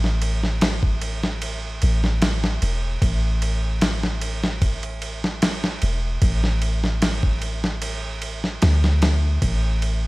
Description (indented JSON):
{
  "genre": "trip hop",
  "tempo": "75 BPM",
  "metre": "4/4",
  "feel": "straight",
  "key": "unclear",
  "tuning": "A4 = 439 Hz",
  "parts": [
    { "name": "soft 808-style bass", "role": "bass", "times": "0.0-10.1 s", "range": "E1 to D2", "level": "-22 LUFS", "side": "equal", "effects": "none" },
    { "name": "dusty soul sampler-style drum kit", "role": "drums", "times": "0.0-10.0 s", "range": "kick drum, ride cymbal, snare drum", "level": "-23 LUFS", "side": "equal", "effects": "small room reverb" }
  ],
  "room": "digital ambience",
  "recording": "vinyl crackle",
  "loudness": "-20 LUFS",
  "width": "side -22 dB against mid",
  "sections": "0.0-10.1 A section",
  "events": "none",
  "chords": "none",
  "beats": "0.62 1.42 2.22 | 3.02 3.82 4.62 5.42 | 6.22 7.02 7.82 8.62 | 9.42"
}